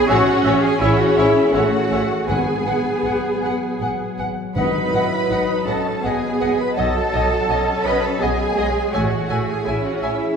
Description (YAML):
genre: cinematic, emotional film score for orchestra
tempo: 82 BPM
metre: 3/4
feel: rubato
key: G# phrygian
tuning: A4 = 441 Hz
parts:
  - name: warm symphonic violin section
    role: second line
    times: 0.0-10.4 s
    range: E5 to B5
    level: -28 LUFS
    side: left 2 dB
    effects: none
  - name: dark studio viola section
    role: accompaniment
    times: 0.0-10.4 s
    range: F#3 to E4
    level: -25 LUFS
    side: right 1 dB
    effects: none
  - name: rich studio cello section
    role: bass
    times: 0.0-10.4 s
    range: E4 to B4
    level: -22 LUFS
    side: right 2 dB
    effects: none
  - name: warm studio violin section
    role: melody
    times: 0.1-10.1 s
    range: C#5 to G#5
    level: -30 LUFS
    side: left 2 dB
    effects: none
  - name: dark clarinet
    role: second line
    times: 0.1-10.2 s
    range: B4 to C#5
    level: -30 LUFS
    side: left 2 dB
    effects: none
  - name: mellow large flute ensemble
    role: second line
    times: 0.1-10.1 s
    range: F#5 to G#5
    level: -29 LUFS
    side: left 2 dB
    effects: none
  - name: warm oboe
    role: second line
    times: 0.1-10.2 s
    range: D#5 to F#5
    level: -30 LUFS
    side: right 1 dB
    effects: none
  - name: mellow French horn section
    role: sustained chords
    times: 0.1-10.4 s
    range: F#3 to D#5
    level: -24 LUFS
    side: left 2 dB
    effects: none
  - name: warm studio double bass section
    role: bass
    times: 0.1-10.1 s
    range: G#1 to B1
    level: -26 LUFS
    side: right 2 dB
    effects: none
  - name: timpani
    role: percussion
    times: 2.3-5.6 s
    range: G#2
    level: -28 LUFS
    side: left 1 dB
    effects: none
room: wet recital hall reverb, RT60 1.7 s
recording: recorded in a church or concert hall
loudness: -17 LUFS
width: side -6 dB against mid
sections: 0.0-10.4 A section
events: none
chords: 0.1 Amaj7; 2.3 G#m7; 6.8 Badd9; 8.9 Amaj7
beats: | 0.09 0.81 1.54 | 2.29 3.05 3.81 | 4.56 5.30 6.03 | 6.76 7.48 8.21 | 8.93 9.65